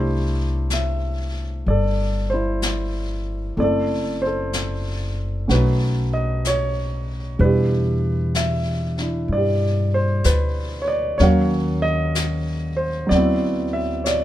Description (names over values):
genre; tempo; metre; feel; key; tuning
jazz ballad; 63 BPM; 4/4; swing 66% on 8ths; C major; A4 = 444 Hz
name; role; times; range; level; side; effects
warm grand piano; accompaniment; 0.0-14.2 s; B2 to F5; -22 LUFS; right 1 dB; none
upright bass; bass; 0.0-14.2 s; F#1 to G2; -22 LUFS; left 1 dB; none
jazz brush drum kit; drums; 0.7-14.2 s; brushed snare drum, hi-hat, snare drum; -30 LUFS; left 3 dB; none
room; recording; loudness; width
light reverb; minimal, uncompressed stereo recording; -19 LUFS; side -13 dB against mid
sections
0.0-14.2 A section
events
none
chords
0.0 C69; 3.6 F#m7b5; 5.5 B7; 7.4 Em7; 11.2 Ebm9; 13.1 D13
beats
0.70 1.66 2.61 | 3.57 4.53 5.48 6.44 | 7.39 8.34 9.29 10.25 | 11.20 12.15 13.11 14.06